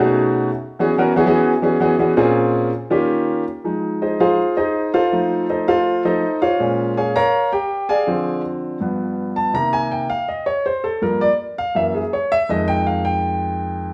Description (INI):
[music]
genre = jazz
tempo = 163 BPM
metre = 4/4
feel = straight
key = F minor from 3.7 s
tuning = A4 = 444 Hz
[part]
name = clear grand piano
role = solo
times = 0.0-13.9 s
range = F2 to Bb5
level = -19 LUFS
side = equal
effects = none
[sound]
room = wet studio reverb, RT60 1.0 s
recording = heard from further back in the room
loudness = -19 LUFS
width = mono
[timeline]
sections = 0.0-3.7 A section; 3.7-13.9 B section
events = grand piano solo 3.7-13.9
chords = 0.0 B13; 0.7 E69; 2.2 Bbm7; 2.9 Eb9; 3.7 Fm7; 5.1 F7; 6.6 Bbm9; 8.1 Dm7b5; 8.8 G7; 9.5 Cm7; 11.0 Gm7; 11.8 Gb7; 12.5 Fm9